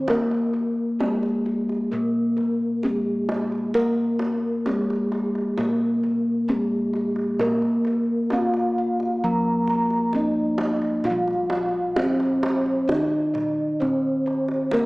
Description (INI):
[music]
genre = Javanese gamelan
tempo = 66 BPM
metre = 4/4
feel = straight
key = Bb slendro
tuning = A4 = 440 Hz
[part]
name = gamelan-type bronze metallophone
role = melody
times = 0.0-14.9 s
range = Ab3-45c to Bb4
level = -26 LUFS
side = equal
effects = none
[part]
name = gamelan-type bronze metallophone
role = accompaniment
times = 0.0-14.9 s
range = Eb3-35c to Bb3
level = -24 LUFS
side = left 1 dB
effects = none
[part]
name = gamelan-type bronze metallophone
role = arpeggios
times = 0.0-14.9 s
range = Ab4-45c to Bb5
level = -29 LUFS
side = right 1 dB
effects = none
[part]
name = gamelan-type bossed gongs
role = bass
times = 0.0-14.9 s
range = Bb1 to Bb4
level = -29 LUFS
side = equal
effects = none
[part]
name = kendang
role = percussion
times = 0.1-14.9 s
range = none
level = -31 LUFS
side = right 1 dB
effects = none
[sound]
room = moderate scoring stage reverb, RT60 1.7 s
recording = small speaker sound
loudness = -21 LUFS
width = side -23 dB against mid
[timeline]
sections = 0.0-11.1 A section; 11.1-14.9 A section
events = none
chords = none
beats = | 0.09 1.00 1.92 2.83 | 3.74 4.66 5.57 6.49 | 7.40 8.32 9.23 10.15 | 11.06 11.98 12.89 13.80 | 14.72